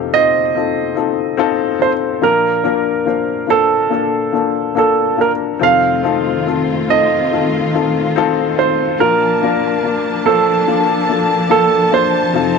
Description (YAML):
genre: pop ballad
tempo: 72 BPM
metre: 4/4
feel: straight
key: Bb major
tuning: A4 = 440 Hz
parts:
  - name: warm upright piano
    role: accompaniment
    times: 0.0-12.6 s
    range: F2 to C5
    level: -16 LUFS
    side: left 11 dB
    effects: none
  - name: clear baby grand piano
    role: melody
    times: 0.1-12.6 s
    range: A4 to F5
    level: -16 LUFS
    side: right 8 dB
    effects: none
  - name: warm symphonic string section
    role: sustained chords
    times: 5.6-12.6 s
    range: Eb3 to A5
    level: -19 LUFS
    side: equal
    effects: none
room: wet spring reverb, RT60 1.3 s, studio reverb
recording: 1960s-style stereo with parts hard left and right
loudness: -13 LUFS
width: side -5 dB against mid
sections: 0.0-12.6 A section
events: none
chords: 0.0 F7; 2.2 Bbmaj7; 5.6 F7; 9.0 Bbmaj7